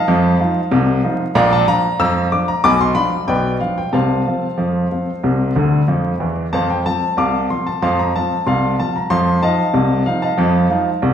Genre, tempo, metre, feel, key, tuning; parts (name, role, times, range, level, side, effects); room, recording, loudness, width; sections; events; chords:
ragtime piano; 93 BPM; 2/4; straight; F major; A4 = 443 Hz
warm upright piano; solo; 0.0-11.1 s; Bb1 to E6; -14 LUFS; equal
wet recital hall reverb, RT60 1.6 s; recorded in a church or concert hall, vinyl crackle; -14 LUFS; side -8 dB against mid
0.0-11.1 A section
upright piano fill 5.6-6.5
0.0 F7; 1.4 Bb; 2.6 Bdim; 3.9 F/C; 5.2 C; 6.5 F; 9.1 F7